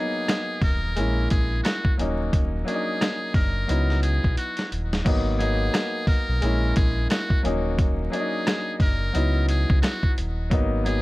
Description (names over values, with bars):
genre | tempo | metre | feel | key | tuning
hip hop, boom-bap hip-hop | 88 BPM | 4/4 | swing 59% on 16ths | G# minor | A4 = 440 Hz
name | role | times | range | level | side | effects
trumpet with metal mute | melody | 0.0-11.0 s | F#4 to A#4 | -30 LUFS | equal | high-pass filter, low-pass filter, ping-pong delay
bright upright piano | accompaniment | 0.0-11.0 s | F#3 to E4 | -28 LUFS | left 1 dB | cassette tape, high-pass filter, low-pass filter
dusty soul sampler-style drum kit | drums | 0.3-11.0 s | crash cymbal, hi-hat, kick drum, rim click, snare drum | -23 LUFS | equal | none
sub bass with octave | bass | 0.6-11.0 s | D#1 to C#2 | -24 LUFS | equal | none
room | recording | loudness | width
little or no reverb | vinyl crackle | -21 LUFS | side -20 dB against mid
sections
0.0-5.1 A section; 5.1-11.0 B section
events
drum fill 4.4-5.1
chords
0.0 G#m9; 1.0 A#m7b5; 2.0 D#m7; 3.7 C#m11; 5.1 G#m9; 6.4 A#m7b5; 7.4 D#m7; 9.1 C#m11; 10.5 G#m9